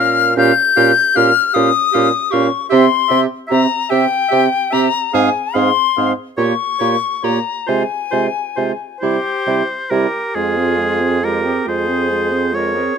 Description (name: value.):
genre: classical, slow romantic movement for wind quintet.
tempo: 45-52 BPM (dotted quarters).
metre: 6/8.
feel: rubato.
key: F minor.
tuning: A4 = 441 Hz.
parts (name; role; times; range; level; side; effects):
silver concert flute; melody; 0.0-13.0 s; F4 to G6; -16 LUFS; left 8 dB; none.
clear oboe; second line; 0.0-13.0 s; Ab4 to F5; -22 LUFS; equal; none.
clear clarinet; accompaniment; 0.0-13.0 s; E4 to Bb4; -23 LUFS; right 15 dB; none.
warm French horn; accompaniment; 0.0-13.0 s; G3 to Db4; -21 LUFS; right 4 dB; none.
mellow bassoon; bass; 0.0-12.8 s; F2 to C3; -19 LUFS; right 3 dB; none.
room: light reverb.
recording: none.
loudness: -13 LUFS.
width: side -6 dB against mid.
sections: 0.0-10.3 A section; 10.3-13.0 B section.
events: none.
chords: 0.4 Gm7b5/Bb; 2.7 C; 5.1 Fm/Ab; 6.4 Gdim/Bb; 7.7 Fm/C; 9.0 C; 10.3 Fm.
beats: | 0.38 1.55 | 2.72 3.91 | 5.14 6.38 | 7.68 9.02 | 10.35 11.67 | 12.98.